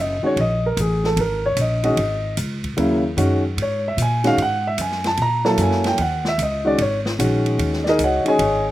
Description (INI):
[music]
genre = modal jazz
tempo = 150 BPM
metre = 4/4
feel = swing 66% on 8ths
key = unclear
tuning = A4 = 441 Hz
[part]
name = warm grand piano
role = accompaniment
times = 0.0-8.6 s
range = C#3 to A#5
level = -19 LUFS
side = equal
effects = slapback echo
[part]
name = upright bass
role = bass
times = 0.0-8.7 s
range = F#1 to A#2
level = -23 LUFS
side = equal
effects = none
[part]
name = open jazz drum kit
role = drums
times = 0.4-8.5 s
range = hi-hat, kick drum, ride cymbal, snare drum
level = -29 LUFS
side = right 1 dB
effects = none
[sound]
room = little or no reverb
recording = recorded outdoors, with no room sound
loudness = -17 LUFS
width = side -14 dB against mid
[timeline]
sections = 0.0-8.7 A section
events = none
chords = 0.0 G#9sus4